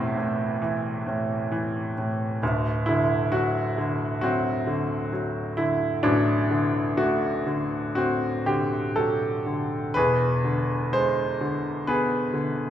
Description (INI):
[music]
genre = classical, lyrical solo piano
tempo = 60-67 BPM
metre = 4/4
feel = rubato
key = unclear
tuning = A4 = 440 Hz
[part]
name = clear baby grand piano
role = solo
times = 0.0-12.7 s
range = D1 to C5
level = -23 LUFS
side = equal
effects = none
[sound]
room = moderate recital hall reverb, RT60 1.4 s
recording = minimal, uncompressed stereo recording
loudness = -23 LUFS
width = side -10 dB against mid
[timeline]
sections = 0.0-12.7 A section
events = none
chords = 0.0 Am7; 2.4 D7; 10.0 E7